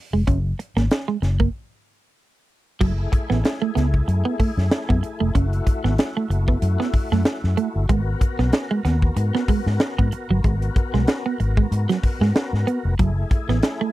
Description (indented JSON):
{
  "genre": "funk",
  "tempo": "94 BPM",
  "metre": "4/4",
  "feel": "swing 56% on 16ths",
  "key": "unclear",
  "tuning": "A4 = 440 Hz",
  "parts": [
    { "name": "clean electric guitar", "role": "riff", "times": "0.1-13.9 s", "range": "F#3 to C#4", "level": "-22 LUFS", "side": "right 4 dB", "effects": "phaser" },
    { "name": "vintage muted fingered electric bass", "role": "bass", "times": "0.1-13.6 s", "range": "E#1 to G#2", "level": "-21 LUFS", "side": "left 1 dB", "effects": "none" },
    { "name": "crisp fusion drum kit", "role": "drums", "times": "0.3-13.8 s", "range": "crash cymbal, hi-hat, kick drum, snare drum", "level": "-21 LUFS", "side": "equal", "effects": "none" },
    { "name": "overdriven tonewheel organ", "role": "sustained chords", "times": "2.8-13.9 s", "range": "A3 to A#4", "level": "-31 LUFS", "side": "left 3 dB", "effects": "slow rotary speaker, chorus vibrato" }
  ],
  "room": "little or no reverb",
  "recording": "dry, close 1970s-style studio recording",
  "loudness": "-18 LUFS",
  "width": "side -16 dB against mid",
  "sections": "0.0-2.8 A section; 2.8-13.9 B section",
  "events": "break 1.5-2.8",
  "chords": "0.0 F#add9; 2.8 F#m9; 7.9 G#m7; 13.0 F#m9",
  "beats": "| 0.28 0.91 1.54 2.18 | 2.81 3.45 4.08 4.72 | 5.36 5.99 6.63 7.26 | 7.90 8.54 9.17 9.81 | 10.45 11.08 11.72 12.35 | 12.99 13.63"
}